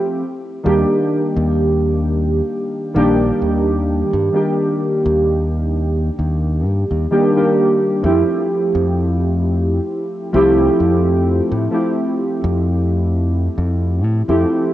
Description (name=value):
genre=vaporwave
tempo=65 BPM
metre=4/4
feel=swing 54% on 16ths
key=F major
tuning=A4 = 441 Hz
part: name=warbly lo-fi synth keys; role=accompaniment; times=0.0-14.7 s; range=Eb3 to G4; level=-16 LUFS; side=equal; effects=lush chorus, analog delay
part: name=modern bright fingered electric bass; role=bass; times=0.7-14.4 s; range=Bb1 to A2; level=-18 LUFS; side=equal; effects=none
room=moderate plate reverb, RT60 2.8 s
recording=worn, warbling old tape, cassette tape, warbly pitch drift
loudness=-15 LUFS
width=side -13 dB against mid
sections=0.0-14.7 A section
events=none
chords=0.2 Ebmaj7; 8.0 Fmaj9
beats=| 0.65 1.57 2.50 3.42 | 4.34 5.27 6.19 7.11 | 8.04 8.96 9.88 10.81 | 11.73 12.65 13.57 14.50